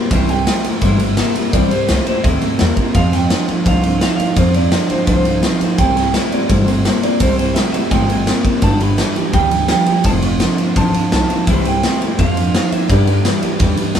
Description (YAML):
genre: rockabilly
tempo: 169 BPM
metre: 4/4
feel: straight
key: C major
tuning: A4 = 442 Hz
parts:
  - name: picked steel-string acoustic guitar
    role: accompaniment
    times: 0.0-14.0 s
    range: C3 to C5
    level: -22 LUFS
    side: left 4 dB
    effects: none
  - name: electric guitar through a small old amp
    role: riff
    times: 0.0-14.0 s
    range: F2 to Bb3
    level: -18 LUFS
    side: right 2 dB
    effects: spring reverb
  - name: electric guitar through a small old amp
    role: melody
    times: 0.1-13.9 s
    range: C5 to C6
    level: -21 LUFS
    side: right 3 dB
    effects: none
  - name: upright bass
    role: bass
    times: 0.1-14.0 s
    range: F1 to G2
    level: -19 LUFS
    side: equal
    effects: none
  - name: raw garage drum kit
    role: drums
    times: 0.1-14.0 s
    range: kick drum, ride cymbal, snare drum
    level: -18 LUFS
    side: equal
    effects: none
room: light reverb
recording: band playing live in one room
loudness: -13 LUFS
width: side -8 dB against mid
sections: 0.0-14.0 A section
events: none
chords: 0.0 C; 3.0 F; 5.8 C; 8.6 G; 10.1 F; 11.5 C; 12.2 F; 12.9 G